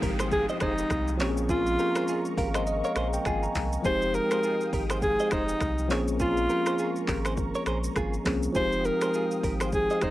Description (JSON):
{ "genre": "afrobeats", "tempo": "102 BPM", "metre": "4/4", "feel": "swing 58% on 16ths", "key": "F minor", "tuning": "A4 = 441 Hz", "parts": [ { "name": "bell-like tine electric piano", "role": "accompaniment", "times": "0.0-10.1 s", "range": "F3 to Bb5", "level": "-30 LUFS", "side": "left 2 dB", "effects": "medium stereo tremolo" }, { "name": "warm analog pad", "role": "sustained chords", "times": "0.0-10.1 s", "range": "Ab3 to Eb6", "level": "-38 LUFS", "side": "right 1 dB", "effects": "chorus" }, { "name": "direct-recorded clean electric guitar", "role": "riff", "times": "0.0-10.1 s", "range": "F4 to Eb5", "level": "-35 LUFS", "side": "right 3 dB", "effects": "spring reverb, analog delay" }, { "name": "warm sub bass", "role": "bass", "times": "0.0-10.1 s", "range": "F1 to C2", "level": "-33 LUFS", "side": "equal", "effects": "none" }, { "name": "deep house drum kit", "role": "drums", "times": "0.0-10.1 s", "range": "finger snaps, handclaps, hi-hat, kick drum, rim click, shaker", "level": "-32 LUFS", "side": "equal", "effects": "none" }, { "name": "downlifter", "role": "sound effects", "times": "0.0-3.8 s", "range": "none", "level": "-42 LUFS", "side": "left 1 dB", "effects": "none" }, { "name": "breathy alto saxophone", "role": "melody", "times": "0.3-10.1 s", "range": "Eb4 to C5", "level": "-28 LUFS", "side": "equal", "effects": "analog delay" } ], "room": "little or no reverb", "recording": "dry, gritty hardware recording", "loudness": "-24 LUFS", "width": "side -15 dB against mid", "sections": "0.0-10.1 A section", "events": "tine electric piano fill 2.1-3.8", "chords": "0.0 Fm9; 1.2 Bbm9; 3.8 Fm9; 5.9 Bbm9; 8.6 Fm9", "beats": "0.32 0.91 | 1.49 2.08 2.67 3.26 | 3.85 4.43 5.02 5.61 | 6.20 6.79 7.38 7.96 | 8.55 9.14 9.73" }